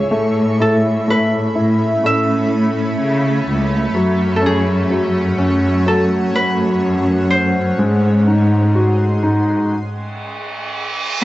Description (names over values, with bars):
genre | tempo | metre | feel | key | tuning
pop ballad | 62 BPM | 4/4 | straight | A major | A4 = 440 Hz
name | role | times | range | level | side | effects
Celtic harp | melody | 0.0-11.2 s | G#4 to E5 | -21 LUFS | equal | plate reverb
warm concert grand piano | accompaniment | 0.0-9.7 s | C#3 to F#4 | -18 LUFS | left 1 dB | cassette tape, plate reverb
shimmering ambient pad | sustained chords | 0.0-9.7 s | A3 to B#5 | -22 LUFS | right 1 dB | chorus, built-in reverb, cassette tape, plate reverb
rich studio cello section | bass | 0.0-9.7 s | C#2 to C#3 | -18 LUFS | equal | none
reverse cymbal | sound effects | 10.1-11.2 s | none | -22 LUFS | right 3 dB | none
room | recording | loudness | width
light reverb | home recording on cassette, nothing above 7.9 kHz | -14 LUFS | side -16 dB against mid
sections
0.0-11.2 A section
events
stop 9.7-11.2; reverse cymbal 10.1-11.2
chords
0.1 Aadd9; 4.0 F#m; 7.8 G#7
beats
| 0.11 1.08 2.04 3.00 | 3.95 4.91 5.86 6.83 | 7.79 8.76 9.73 10.71